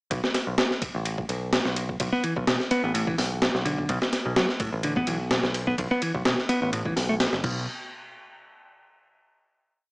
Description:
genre	breakbeat, breaks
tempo	127 BPM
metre	4/4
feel	swing 54% on 16ths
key	B minor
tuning	A4 = 441 Hz
part	picked electric bass	bass	0.1-7.7 s	F#1 to B1	-30 LUFS	equal	none
part	breakbeat sampler-style drum kit	drums	0.1-7.5 s	crash cymbal, hi-hat, kick drum, ride cymbal, snare drum	-26 LUFS	equal	small room ambience
part	modern bright picked electric bass	riff	2.1-7.7 s	A2 to B3	-27 LUFS	equal	analog delay
room	light reverb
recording	dry, gritty hardware recording, transformer saturation, small speaker sound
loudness	-23 LUFS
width	side -36 dB against mid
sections	0.1-7.7 groove; 7.7-9.6 final hit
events	none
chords	0.1 B7(no3); 7.4 N.C.

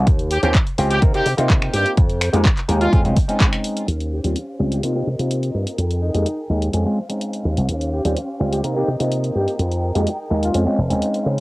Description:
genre	filtered disco house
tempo	126 BPM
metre	4/4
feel	straight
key	F minor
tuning	A4 = 440 Hz
part	auto-wah clav	accompaniment	0.0-11.4 s	G3 to Bb4	-22 LUFS	equal	phaser, vintage 12-bit sampler grit, sidechain pumping, low-pass filter, cassette tape
part	slap bass with an envelope filter	bass	0.0-11.4 s	F1 to Db3	-20 LUFS	equal	sidechain pumping, low-pass filter
part	electronic kick drum	drums	0.1-3.5 s	none	-16 LUFS	equal	overdrive, cassette tape
part	house drum kit	drums	0.1-11.4 s	finger snaps, handclaps, hi-hat	-26 LUFS	equal	overdrive, sidechain pumping on hats, cassette tape
part	brilliant horn section	melody	0.3-10.6 s	Eb4 to G4	-24 LUFS	left 1 dB	vintage 12-bit sampler grit, sidechain pumping, low-pass filter, tape echo
part	rich chamber violin section	sustained chords	3.9-11.4 s	C4 to G5	-31 LUFS	equal	sidechain pumping, low-pass filter, cassette tape
room	light reverb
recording	home recording on cassette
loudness	-17 LUFS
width	side -20 dB against mid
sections	0.0-3.9 A section; 3.9-11.4 B section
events	filter sweep 0.0-3.9; band accent 3.4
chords	0.1 Eb13; 1.0 Cm7; 2.0 Fm11; 2.9 Dbmaj7; 3.9 Eb13; 4.8 Cm7; 5.8 Fm11; 6.7 Dbmaj7/F; 7.7 Eb13; 8.6 Cm7; 9.6 Fm11; 10.5 Dbmaj7/F

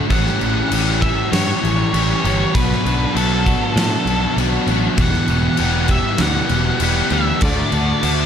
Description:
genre	rock, shoegaze and dream pop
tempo	98 BPM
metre	4/4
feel	straight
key	unclear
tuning	A4 = 438 Hz
part	crunchy overdriven guitar	riff	0.0-8.3 s	E2 to G4	-19 LUFS	equal	analog chorus
part	octave-fuzz lead guitar	melody	0.1-8.3 s	A4 to F#5	-23 LUFS	equal	distortion, tape echo
part	picked electric bass	bass	0.1-8.3 s	E1 to A2	-21 LUFS	equal	none
part	huge arena drum kit	drums	0.1-8.2 s	crash cymbal, kick drum, snare drum	-21 LUFS	equal	none
room	light reverb, studio ambience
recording	none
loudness	-15 LUFS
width	side -8 dB against mid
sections	0.0-8.3 A section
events	none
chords	0.1 A7; 2.5 Bm7; 5.0 Em; 7.4 D

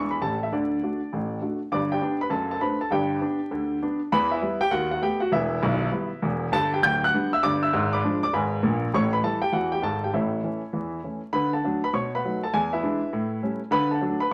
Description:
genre	jazz, stride piano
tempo	200 BPM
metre	4/4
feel	swing 64% on 8ths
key	G major, D major from 6.5 s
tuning	A4 = 441 Hz
part	warm grand piano	solo	0.0-14.3 s	B0 to G6	-25 LUFS	equal	none
room	wet studio reverb, RT60 0.8 s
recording	vinyl crackle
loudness	-25 LUFS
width	mono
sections	0.0-1.7 A section; 1.7-11.3 B section; 11.3-14.3 A section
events	none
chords	0.2 A7; 0.5 D; 1.7 G; 2.3 D7/F#; 2.9 G; 4.1 Em; 4.7 B7/D#; 5.3 Em; 6.5 G; 7.7 G#dim7; 8.9 A7; 10.1 A; 11.3 D; 11.9 B7; 12.5 E7; 13.1 A7; 13.7 D

